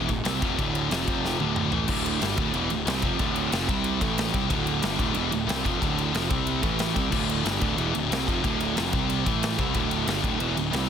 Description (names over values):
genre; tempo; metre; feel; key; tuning
heavy metal; 183 BPM; 4/4; straight; D minor; A4 = 441 Hz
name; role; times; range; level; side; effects
heavy high-gain guitar; riff; 0.0-10.9 s; D2 to C4; -28 LUFS; left 13 dB; distortion
sludgy distorted guitar; riff; 0.0-10.9 s; D2 to C4; -28 LUFS; right 9 dB; overdrive
fuzz picked electric bass; bass; 0.0-10.9 s; D1 to C2; -32 LUFS; equal; overdrive
big rock drum kit; drums; 0.1-10.8 s; crash cymbal, kick drum, ride cymbal, snare drum, toms; -29 LUFS; equal; none
room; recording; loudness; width
light reverb, small room ambience; dense, heavily limited modern master; -23 LUFS; side -8 dB against mid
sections
0.0-1.9 A section; 1.9-10.9 B section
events
drum fill 1.2-1.9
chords
0.0 Dm; 1.1 F5; 1.4 D5; 1.9 Dm; 3.7 C5; 4.0 A5; 4.3 Dm; 6.3 C5; 6.6 A5; 7.0 Dm; 8.9 C5; 9.3 A5; 9.6 D5